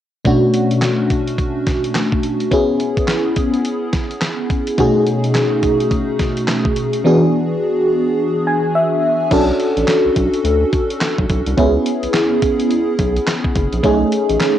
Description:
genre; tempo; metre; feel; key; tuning
R&B, new jack swing; 106 BPM; 4/4; swing 61% on 16ths; B dorian; A4 = 440 Hz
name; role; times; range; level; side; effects
FM electric piano with soft pad layer; accompaniment; 0.2-14.6 s; B2 to G#5; -15 LUFS; equal; chorus, phaser, cassette tape
dusty soul sampler-style drum kit; drums; 0.3-14.6 s; crash cymbal, handclaps, hi-hat, kick drum, snare drum; -20 LUFS; equal; cassette tape
round analog bass; bass; 9.3-14.4 s; F#1 to D2; -20 LUFS; equal; none
room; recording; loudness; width
moderate spring reverb, RT60 1.4 s, digital ambience; home recording on cassette, nothing above 10.4 kHz; -14 LUFS; side -11 dB against mid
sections
0.3-9.3 A section; 9.3-14.6 B section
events
FM electric piano fill 8.2-9.3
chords
0.3 Bm9; 2.5 C#m7; 4.8 B13; 7.0 E9; 9.3 Bm9; 11.6 C#m7; 13.8 B13

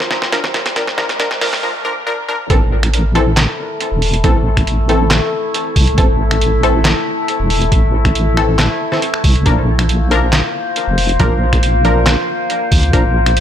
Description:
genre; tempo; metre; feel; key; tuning
deep dubstep; 138 BPM; 4/4; half-time; A phrygian; A4 = 440 Hz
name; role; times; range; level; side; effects
overtone-sweeping drone; sustained chords; 0.0-13.4 s; Bb2 to C5; -20 LUFS; left 2 dB; chorus, built-in reverb
trip hop sampler-style drum kit; drums; 0.0-13.4 s; finger snaps, handclaps, hi-hat, snare drum; -18 LUFS; right 1 dB; none
riser; sound effects; 0.0-1.6 s; none; -30 LUFS; equal; none
filtered dub chord stab; stabs; 0.3-13.0 s; E3 to Bb4; -20 LUFS; left 1 dB; chorus, dub echo
electronic kick drum; drums; 0.3-13.0 s; none; -14 LUFS; equal; none
congas and bongos; percussion; 0.4-1.4 s; none; -38 LUFS; right 3 dB; none
deep soft wobble bass; bass; 2.5-13.4 s; E1 to D2; -14 LUFS; equal; chorus
room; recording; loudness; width
light reverb; high-pass filter; -12 LUFS; side -10 dB against mid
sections
0.0-2.5 A section; 2.5-13.4 B section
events
build-up 0.0-2.5; drum fill 0.0-1.6; riser 0.0-1.6; filter sweep on synth stab 0.0-2.5; break 1.6-2.5; drop 2.5-13.4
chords
0.0 Bb; 2.5 Am; 9.5 Bb

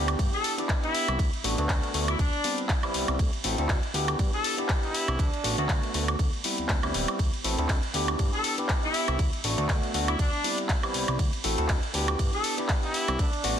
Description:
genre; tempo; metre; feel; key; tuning
filtered disco house; 120 BPM; 4/4; swing 56% on 16ths; unclear; A4 = 438 Hz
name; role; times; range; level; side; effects
overdriven tine electric piano; accompaniment; 0.0-13.6 s; G3 to A4; -31 LUFS; equal; phaser, vintage 12-bit sampler grit, sidechain pumping
fat analog bass; bass; 0.0-13.6 s; D1 to G2; -30 LUFS; equal; sidechain pumping
house drum kit; drums; 0.1-13.6 s; handclaps, hi-hat, ride cymbal, woodblock; -30 LUFS; equal; small room ambience
electronic kick drum; drums; 0.2-13.3 s; none; -27 LUFS; equal; small room ambience
bright horn section; melody; 0.3-13.6 s; D4 to A4; -32 LUFS; left 1 dB; vintage 12-bit sampler grit, sidechain pumping, ping-pong delay
room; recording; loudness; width
light reverb, digital ambience; dense, heavily limited modern master; -24 LUFS; side -9 dB against mid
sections
0.0-13.6 A section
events
none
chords
0.0 Cmaj9/D; 1.2 D6/A; 2.2 Cmaj9; 3.2 D9; 3.9 Cmaj9/D; 5.2 Bm7/A; 6.2 D13sus4; 7.2 D9; 7.9 Cmaj9/D; 9.2 D6/A; 10.2 Cmaj9; 11.2 D9; 11.9 Cmaj9/D

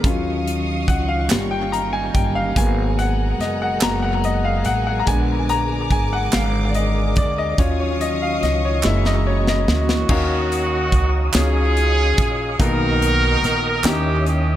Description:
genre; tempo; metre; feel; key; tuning
slow gospel; 48 BPM (dotted quarters); 6/8; straight; Eb minor; A4 = 440 Hz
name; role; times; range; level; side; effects
clear baby grand piano; accompaniment; 0.0-14.6 s; Eb3 to Bb5; -22 LUFS; left 3 dB; analog delay
clear studio string section; sustained chords; 0.0-10.1 s; Fb4 to Eb6; -31 LUFS; right 2 dB; none
mellow tonewheel organ; sustained chords; 0.0-14.6 s; D3 to Eb6; -28 LUFS; right 1 dB; slow rotary speaker, chorus vibrato
upright bass; bass; 0.0-14.6 s; Gb1 to Eb2; -22 LUFS; right 1 dB; none
modern studio drum kit; drums; 0.0-14.5 s; crash cymbal, hi-hat, kick drum, snare drum; -22 LUFS; equal; none
group handclap; percussion; 1.3-14.2 s; none; -26 LUFS; right 6 dB; analog delay
warm horn section; melody; 9.7-14.6 s; Bb3 to A#4; -21 LUFS; right 1 dB; analog delay
room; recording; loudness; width
small room ambience; echo-heavy mix; -17 LUFS; side -12 dB against mid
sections
0.0-10.1 A section; 10.1-14.6 B section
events
grand piano solo 0.0-10.1; drum fill 8.8-10.1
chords
0.0 Ebm9; 1.3 Eb7/G; 2.6 Abm9; 5.1 Bb7b9; 7.6 Ebm9; 8.8 Gb7; 10.1 Ebm9; 12.6 Bmaj7; 13.8 Eb7b9

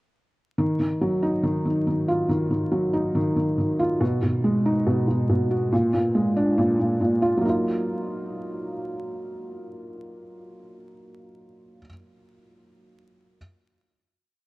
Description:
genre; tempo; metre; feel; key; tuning
hip hop, drill; 140 BPM; 4/4; half-time; Eb harmonic minor; A4 = 440 Hz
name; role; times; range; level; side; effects
felt-muted upright piano; solo; 0.6-13.4 s; Bb2 to F#4; -22 LUFS; equal; none
room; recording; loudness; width
light reverb, small room ambience; worn, warbling old tape, cassette tape, vinyl crackle, warbly pitch drift; -21 LUFS; side -20 dB against mid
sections
0.6-7.4 breakdown; 7.4-10.9 final chord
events
none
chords
0.6 Ebmadd9; 4.0 B6; 5.7 Bb7; 7.4 Ebmadd9

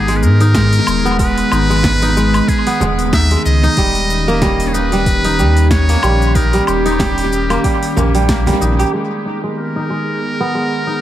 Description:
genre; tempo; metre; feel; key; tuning
organic downtempo; 93 BPM; 4/4; swing 56% on 16ths; G# harmonic minor; A4 = 440 Hz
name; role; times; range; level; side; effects
trumpet with metal mute; melody; 0.0-11.0 s; G4 to E5; -20 LUFS; equal; dub echo
warbly tape-like pad; sustained chords; 0.0-11.0 s; D#3 to G#4; -20 LUFS; equal; chorus, built-in reverb, sidechain pumping
kora; arpeggios; 0.0-11.0 s; G3 to G4; -18 LUFS; right 1 dB; vintage 12-bit sampler grit, low-pass filter, dub echo
warm sub bass; bass; 0.0-8.8 s; D#1 to G#2; -15 LUFS; equal; sidechain pumping
deep house drum kit; drums; 0.1-8.9 s; hi-hat, shaker, snare drum, woodblock; -22 LUFS; left 1 dB; overdrive, low-pass filter on hats, studio ambience, low-pass filter on perc, low-pass filter on snare, tape echo
electronic kick drum; drums; 0.5-8.4 s; none; -19 LUFS; equal; studio ambience
frame drum; percussion; 1.8-8.6 s; none; -24 LUFS; right 2 dB; none
room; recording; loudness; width
light reverb, digital ambience; echo-heavy mix; -12 LUFS; side -12 dB against mid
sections
0.0-8.9 A section; 8.9-11.0 B section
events
filter sweep on kora 8.9-11.0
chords
0.0 G#m; 3.8 D#7; 8.9 G#m

